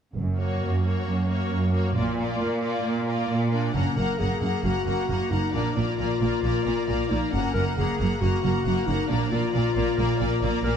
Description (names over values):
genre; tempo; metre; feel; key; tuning
cinematic; 135 BPM; 4/4; straight; F# major; A4 = 440 Hz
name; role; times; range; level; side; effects
warm symphonic double bass section; bass; 0.1-10.7 s; F#1 to A#1; -28 LUFS; right 2 dB; none
rich symphonic cello section; bass; 0.2-10.7 s; F#2 to A#2; -27 LUFS; right 2 dB; none
rich chamber violin section; melody; 0.4-10.8 s; C#5 to A#5; -35 LUFS; left 4 dB; none
warm symphonic violin section; second line; 0.4-10.8 s; E#4 to F#5; -34 LUFS; left 2 dB; none
clear symphonic viola section; accompaniment; 0.4-10.8 s; A#3; -31 LUFS; right 1 dB; none
warm clarinet; second line; 3.5-10.7 s; C#4 to A#4; -28 LUFS; left 5 dB; none
room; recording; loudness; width
moderate scoring stage reverb, RT60 2.0 s; dark, warm production; -22 LUFS; side -8 dB against mid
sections
0.1-3.7 A section; 3.7-10.8 B section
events
none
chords
0.1 F#; 1.9 A#; 3.7 F#; 5.5 A#; 7.3 F#; 9.1 A#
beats
| 0.15 0.60 1.06 1.50 | 1.95 2.39 2.83 3.28 | 3.75 4.20 4.64 5.09 | 5.54 5.99 6.43 6.88 | 7.33 7.77 8.21 8.65 | 9.09 9.54 9.98 10.42